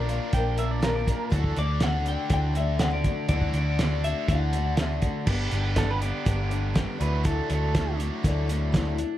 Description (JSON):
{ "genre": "folk rock and heartland rock", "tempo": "121 BPM", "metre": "4/4", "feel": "straight", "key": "unclear", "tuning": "A4 = 440 Hz", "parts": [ { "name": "twelve-string electric guitar", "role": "melody", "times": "0.0-5.0 s", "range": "D5 to G5", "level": "-33 LUFS", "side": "left 5 dB", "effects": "analog delay" }, { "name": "picked steel-string acoustic guitar", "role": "accompaniment", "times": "0.0-9.2 s", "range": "G2 to D5", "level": "-33 LUFS", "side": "left 6 dB", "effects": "none" }, { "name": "overdriven electric guitar", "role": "riff", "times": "0.0-9.2 s", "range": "G2 to Bb4", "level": "-33 LUFS", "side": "right 2 dB", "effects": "none" }, { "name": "hollow-body short-scale picked electric bass", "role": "bass", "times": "0.0-9.0 s", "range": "G1 to D2", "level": "-27 LUFS", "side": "equal", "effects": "none" }, { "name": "cloth-damped thuddy drum kit", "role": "drums", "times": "0.1-9.1 s", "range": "crash cymbal, hi-hat, kick drum, snare drum", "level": "-27 LUFS", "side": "equal", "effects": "none" }, { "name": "pedal steel guitar", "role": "second line", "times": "0.3-1.6, 5.8-8.0 s", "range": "A4 to G5", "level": "-33 LUFS", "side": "right 4 dB", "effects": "none" } ], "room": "little or no reverb", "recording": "dark, warm production", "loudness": "-23 LUFS", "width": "side -13 dB against mid", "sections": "0.0-5.3 A section; 5.3-9.2 B section", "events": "pedal steel guitar solo 5.3-9.2", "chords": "0.0 Bb; 1.3 Dadd9; 5.3 G; 7.0 Dadd9" }